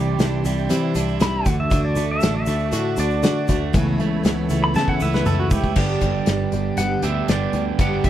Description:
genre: folk rock and heartland rock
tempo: 118 BPM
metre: 4/4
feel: straight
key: unclear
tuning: A4 = 440 Hz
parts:
  - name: pedal steel guitar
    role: melody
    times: 0.0-7.6 s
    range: F#4 to B5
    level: -26 LUFS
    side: left 1 dB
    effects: none
  - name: picked twelve-string acoustic guitar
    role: accompaniment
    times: 0.0-8.1 s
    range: G2 to G4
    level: -25 LUFS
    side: left 3 dB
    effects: none
  - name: musette accordion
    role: sustained chords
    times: 0.0-5.7 s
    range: E4 to C6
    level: -36 LUFS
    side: right 3 dB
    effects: none
  - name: electric guitar at the edge of break-up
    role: riff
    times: 0.0-8.1 s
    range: G2 to G4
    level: -26 LUFS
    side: right 11 dB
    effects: vibrato effect
  - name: picked electric bass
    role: bass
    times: 0.0-8.1 s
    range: G1 to D3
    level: -24 LUFS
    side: equal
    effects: none
  - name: loose indie drum kit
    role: drums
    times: 0.2-8.1 s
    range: crash cymbal, hi-hat, kick drum, snare drum, toms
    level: -22 LUFS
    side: left 1 dB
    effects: none
  - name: tube shaker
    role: percussion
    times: 0.2-5.7 s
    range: none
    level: -41 LUFS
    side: left 9 dB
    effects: none
  - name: clean lap steel guitar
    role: second line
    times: 7.8-8.1 s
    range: E5 to F#5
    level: -28 LUFS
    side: left 4 dB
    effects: none
room: little or no reverb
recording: none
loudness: -18 LUFS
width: side -12 dB against mid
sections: 0.0-5.8 A section; 5.8-8.1 B section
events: pedal steel guitar solo 0.0-5.8; drum fill 4.8-5.8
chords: 0.0 Cadd9; 1.5 D; 3.7 Aadd9/C#; 5.8 G

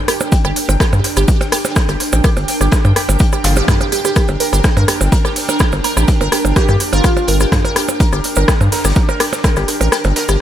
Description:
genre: minimal techno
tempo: 125 BPM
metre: 4/4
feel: straight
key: G minor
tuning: A4 = 444 Hz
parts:
  - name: granular cloud pad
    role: texture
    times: 0.0-10.4 s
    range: D4 to G5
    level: -22 LUFS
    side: right 2 dB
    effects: built-in reverb, sidechain pumping
  - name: resonant blip pluck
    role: riff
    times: 0.1-10.3 s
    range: F4 to G5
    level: -21 LUFS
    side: right 2 dB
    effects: phaser, sidechain pumping, tape echo
  - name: garage drum kit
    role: drums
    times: 0.1-10.3 s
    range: hi-hat, rim click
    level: -22 LUFS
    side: right 1 dB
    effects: analog delay
  - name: raw garage drum kit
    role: drums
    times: 0.1-10.3 s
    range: hi-hat, snare drum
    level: -30 LUFS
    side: left 2 dB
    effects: high-pass filter on hats, high-pass filter on snare, high-pass filter on room, analog delay
  - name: minimal click drum kit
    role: percussion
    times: 0.1-10.4 s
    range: percussion blips, rim click, toms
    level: -20 LUFS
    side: equal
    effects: dub echo
  - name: cabasa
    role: percussion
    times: 0.2-10.4 s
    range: none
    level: -25 LUFS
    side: right 5 dB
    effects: none
  - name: electronic kick drum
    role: drums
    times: 0.3-9.5 s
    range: none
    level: -14 LUFS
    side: equal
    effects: overdrive
  - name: rubbery square bass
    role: bass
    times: 0.4-10.4 s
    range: G1 to G2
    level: -15 LUFS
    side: equal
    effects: tube saturation, sidechain pumping
  - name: zap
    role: sound effects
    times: 3.4-3.6 s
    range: none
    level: -25 LUFS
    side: equal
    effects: none
  - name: airy dreamy lead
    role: melody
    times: 6.6-7.3 s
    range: F4 to G4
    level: -21 LUFS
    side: equal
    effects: chorus, analog delay
room: little or no reverb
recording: echo-heavy mix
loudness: -12 LUFS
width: side -11 dB against mid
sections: 0.0-10.4 A section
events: kick drops out 9.9-10.4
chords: 0.0 Gm

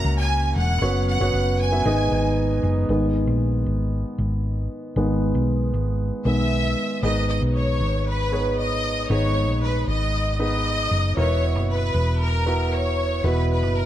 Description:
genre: piano-driven pop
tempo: 116 BPM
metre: 4/4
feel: straight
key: G# minor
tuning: A4 = 440 Hz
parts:
  - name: bright studio violin section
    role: melody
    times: 0.0-2.6, 6.3-13.9 s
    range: A#4 to A#5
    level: -26 LUFS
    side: equal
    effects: none
  - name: dark baby grand piano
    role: accompaniment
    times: 0.0-13.9 s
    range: G#2 to E5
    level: -25 LUFS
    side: right 1 dB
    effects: none
  - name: hollow-body short-scale fingered electric bass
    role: bass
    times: 0.0-13.9 s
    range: E1 to C#2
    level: -22 LUFS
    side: equal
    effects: none
room: light reverb, small room ambience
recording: dark, warm production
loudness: -20 LUFS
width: side -12 dB against mid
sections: 0.0-2.9 A section; 2.9-7.0 B section; 7.0-13.9 C section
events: grand piano solo 2.9-7.0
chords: 0.0 F#; 0.8 Bsus2/F#; 1.9 G#m; 11.2 Esus2

